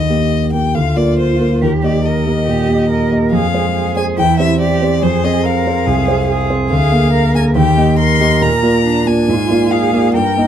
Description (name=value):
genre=quick classical-period movement for piano quartet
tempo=140 BPM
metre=4/4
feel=rubato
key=Eb major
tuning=A4 = 440 Hz
part: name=clear violin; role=melody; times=0.0-10.5 s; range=Bb4 to C6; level=-19 LUFS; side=left 7 dB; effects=none
part: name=clear concert grand piano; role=accompaniment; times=0.0-10.5 s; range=C2 to F5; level=-13 LUFS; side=right 1 dB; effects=none
part: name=warm cello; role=second line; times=0.7-10.5 s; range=D4 to Bb4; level=-20 LUFS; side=right 5 dB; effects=none
room=moderate studio reverb, RT60 0.6 s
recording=dark, warm production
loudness=-12 LUFS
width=side -9 dB against mid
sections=0.0-10.5 A section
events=none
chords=0.0 Eb; 0.7 Bb/D; 1.6 Eb; 3.3 Fm; 4.2 C/E; 5.0 Fm; 6.7 Bb7/D; 7.6 Eb; 8.4 Bb; 9.3 Bb7/Ab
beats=0.31 0.75 1.18 | 1.62 2.05 2.47 2.90 | 3.33 3.75 4.18 4.61 | 5.03 5.45 5.87 6.29 | 6.71 7.14 7.57 7.99 | 8.43 8.86 9.29 9.71 | 10.14